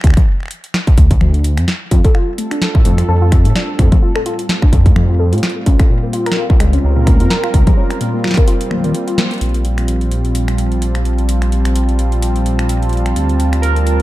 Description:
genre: IDM.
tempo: 128 BPM.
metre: 4/4.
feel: swing 56% on 16ths.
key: Bb major.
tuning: A4 = 440 Hz.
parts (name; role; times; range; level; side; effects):
dark detuned saw bass; bass; 0.0-14.0 s; Bb1 to A2; -14 LUFS; equal; none.
booming analog drum machine; drums; 0.0-14.0 s; congas, finger snaps, hi-hat, snare drum; -21 LUFS; left 1 dB; none.
electronic kick drum; drums; 0.0-8.5 s; none; -11 LUFS; equal; distortion.
warm analog pad; sustained chords; 1.9-14.0 s; G3 to A5; -21 LUFS; right 1 dB; chorus.
warbly dusty pluck; arpeggios; 1.9-9.4 s; A2 to Bb4; -20 LUFS; left 1 dB; chorus, tape echo.
warbly lo-fi synth keys; melody; 13.6-14.0 s; Bb4; -18 LUFS; right 8 dB; chorus, phaser.
room: little or no reverb.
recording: dark, warm production.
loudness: -11 LUFS.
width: side -16 dB against mid.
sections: 0.0-9.4 A section; 9.4-14.0 B section.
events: break 8.5-9.4; band accent 9.2.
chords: 0.0 N.C.; 1.9 F; 5.7 Dbmaj7; 9.4 Bb5; 13.2 Dm.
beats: | 0.04 0.51 0.98 1.45 | 1.92 2.38 2.85 3.32 | 3.79 4.26 4.73 5.20 | 5.67 6.13 6.60 7.07 | 7.54 8.01 8.48 8.95 | 9.41 9.88 10.35 10.82 | 11.29 11.76 12.23 12.70 | 13.16 13.63.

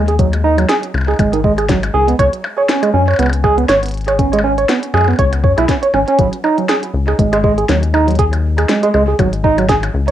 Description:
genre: IDM.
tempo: 120 BPM.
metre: 4/4.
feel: swing 56% on 16ths.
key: G# minor.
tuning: A4 = 439 Hz.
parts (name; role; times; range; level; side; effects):
rubbery square bass; bass; 0.0-10.1 s; G#1 to F#2; -16 LUFS; left 2 dB; none.
overdriven tine electric piano; arpeggios; 0.1-10.1 s; D#3 to C#5; -14 LUFS; right 3 dB; cassette tape, analog delay.
glitchy drum kit; drums; 0.1-10.1 s; hi-hat, percussion blips, snare drum; -22 LUFS; left 2 dB; overdrive, analog delay.
electronic kick drum; drums; 0.2-9.8 s; none; -16 LUFS; left 2 dB; overdrive.
room: wet small room reverb, RT60 0.6 s.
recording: home recording on cassette.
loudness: -12 LUFS.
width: side -11 dB against mid.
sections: 0.0-10.1 A section.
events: none.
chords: 0.0 G#5; 1.9 C#5; 6.2 G#5.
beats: | 0.19 0.69 1.19 1.69 | 2.19 2.69 3.19 3.69 | 4.19 4.69 5.19 5.69 | 6.19 6.69 7.19 7.69 | 8.19 8.69 9.19 9.69.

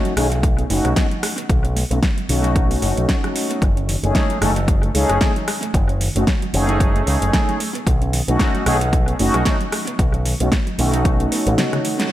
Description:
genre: nu-disco, nu disco.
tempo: 113 BPM.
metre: 4/4.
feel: swing 56% on 16ths.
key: unclear.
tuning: A4 = 440 Hz.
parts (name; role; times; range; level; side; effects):
mellow synth brass; accompaniment; 0.0-12.1 s; A3 to A4; -22 LUFS; equal; chorus, analog delay.
soft round pluck; arpeggios; 0.1-12.1 s; D#3 to C#4; -29 LUFS; right 3 dB; chorus, sidechain pumping, analog delay.
pop drum kit; drums; 0.1-12.1 s; hi-hat, rim click, snare drum, toms; -24 LUFS; equal; overdrive, low-pass filter on hats, low-pass filter on snare, low-pass filter on toms, low-pass filter on room, analog delay.
picked electric bass with an envelope filter; bass; 0.2-11.5 s; F#1 to C#2; -20 LUFS; equal; sidechain pumping.
electronic kick drum; drums; 0.4-11.2 s; none; -18 LUFS; equal; overdrive.
room: light reverb, digital ambience.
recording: echo-heavy mix.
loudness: -16 LUFS.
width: side -13 dB against mid.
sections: 0.0-12.1 A section.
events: kick drops out 11.6-12.1; drum fill 11.6-12.1.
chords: 0.0 B9; 3.6 F#m69; 7.6 B9.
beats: 0.43 0.96 | 1.50 2.03 2.56 3.09 | 3.62 4.15 4.68 5.21 | 5.74 6.27 6.80 7.34 | 7.87 8.40 8.93 9.46 | 9.99 10.52 11.05 11.58.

